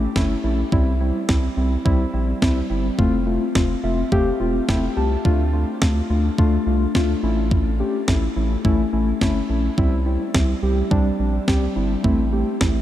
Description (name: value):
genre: synth-pop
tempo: 106 BPM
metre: 4/4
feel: straight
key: unclear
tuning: A4 = 439 Hz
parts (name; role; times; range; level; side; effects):
- muted felt-like synth keys; accompaniment; 0.0-12.8 s; G3 to A5; -21 LUFS; left 2 dB; chorus, shimmer reverb
- round analog bass; bass; 0.0-12.8 s; E1 to D2; -22 LUFS; equal; none
- clean 12-bit digital drum machine; drums; 0.2-12.7 s; kick drum, snare drum; -23 LUFS; equal; none
room: moderate cathedral reverb, RT60 6.0 s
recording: dreamy mix soaked in reverb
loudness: -18 LUFS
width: side -12 dB against mid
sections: 0.0-12.8 A section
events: synth keys fill 3.6-5.3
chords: 0.0 A; 0.7 C; 3.0 F; 5.3 Dm; 7.2 A; 9.8 C; 12.0 Am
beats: 0.16 | 0.72 1.29 1.85 2.42 | 2.99 3.55 4.12 4.68 | 5.25 5.82 6.38 6.95 | 7.51 8.08 8.65 9.21 | 9.78 10.35 10.91 11.48 | 12.04 12.61